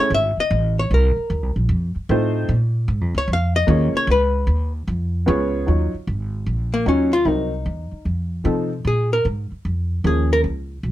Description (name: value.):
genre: jazz.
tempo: 151 BPM.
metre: 4/4.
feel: swing 66% on 8ths.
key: Eb minor from 5.7 s.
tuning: A4 = 437 Hz.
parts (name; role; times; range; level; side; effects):
archtop guitar, miked and amplified; melody; 0.0-10.4 s; Bb3 to E#5; -20 LUFS; left 2 dB; none.
warm upright piano; accompaniment; 0.0-10.4 s; F3 to C#5; -22 LUFS; equal; none.
upright bass; bass; 0.1-10.9 s; G#1 to C3; -20 LUFS; equal; none.
room: light reverb.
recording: none.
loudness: -18 LUFS.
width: side -14 dB against mid.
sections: 0.0-5.7 A section; 5.7-10.9 B section.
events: hollow-body jazz guitar solo 0.0-5.7.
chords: 0.0 Amaj7; 0.9 A#sus24; 1.7 F7; 2.5 A#m7; 4.1 C#7; 5.7 Ebm9; 7.3 Cm7b5; 8.1 F7; 8.9 Bbm7.